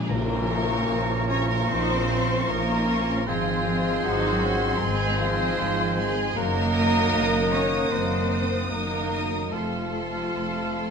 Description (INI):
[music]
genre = classical, slow romantic movement for symphony orchestra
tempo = 76 BPM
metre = 4/4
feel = rubato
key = Bb minor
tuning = A4 = 436 Hz
[part]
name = mellow hollow silver concert flute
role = second line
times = 0.0-10.9 s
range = F5 to Db6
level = -35 LUFS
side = left 4 dB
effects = none
[part]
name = rich studio violin section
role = second line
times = 0.0-10.9 s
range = F4 to Db5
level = -30 LUFS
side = left 2 dB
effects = none
[part]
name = dark studio viola section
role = accompaniment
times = 0.0-10.9 s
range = Bb3 to F4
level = -33 LUFS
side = right 1 dB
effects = none
[part]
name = concert harp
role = arpeggios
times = 0.0-10.9 s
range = F2 to Eb6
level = -35 LUFS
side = left 11 dB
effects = none
[part]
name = warm studio cello section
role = bass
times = 0.0-10.9 s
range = F3 to Db4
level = -30 LUFS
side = right 1 dB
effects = none
[part]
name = timpani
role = percussion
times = 0.0-1.3 s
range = Bb2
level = -32 LUFS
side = left 2 dB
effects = none
[part]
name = bright clarinet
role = second line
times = 0.1-10.9 s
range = C4 to F4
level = -39 LUFS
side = left 2 dB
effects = none
[part]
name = clear oboe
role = second line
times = 0.1-10.9 s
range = F5 to Bb5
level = -36 LUFS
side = right 3 dB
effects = none
[part]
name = mellow bassoon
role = accompaniment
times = 0.1-10.9 s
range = F3 to C4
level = -38 LUFS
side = right 2 dB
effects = none
[part]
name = warm French horn section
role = sustained chords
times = 0.1-10.9 s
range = Bb3 to Bb4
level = -33 LUFS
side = left 4 dB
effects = none
[part]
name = warm trombone section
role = sustained chords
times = 0.1-10.9 s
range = Ab2 to Gb3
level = -36 LUFS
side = right 5 dB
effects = none
[part]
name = warm trumpet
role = stabs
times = 0.1-10.9 s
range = Bb4 to F5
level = -34 LUFS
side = right 4 dB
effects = none
[part]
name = rich studio double bass section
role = bass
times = 0.1-10.9 s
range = F1 to Bb1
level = -29 LUFS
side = right 3 dB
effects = none
[part]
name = tam-tam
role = percussion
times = 0.1-3.2 s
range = none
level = -35 LUFS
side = left 4 dB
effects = none
[part]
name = warm studio violin section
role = melody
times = 0.5-10.9 s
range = C6 to Eb6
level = -33 LUFS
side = left 2 dB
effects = none
[sound]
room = moderate scoring stage reverb, RT60 1.5 s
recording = none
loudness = -22 LUFS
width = side -6 dB against mid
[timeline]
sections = 0.1-10.9 A section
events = band accent 0.1-0.9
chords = 0.1 Bbm; 3.3 Fm/Ab; 6.4 Ebm/Gb; 9.5 F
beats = | 0.09 0.90 1.69 2.48 | 3.27 4.04 4.82 5.59 | 6.37 7.14 7.91 8.71 | 9.53 10.35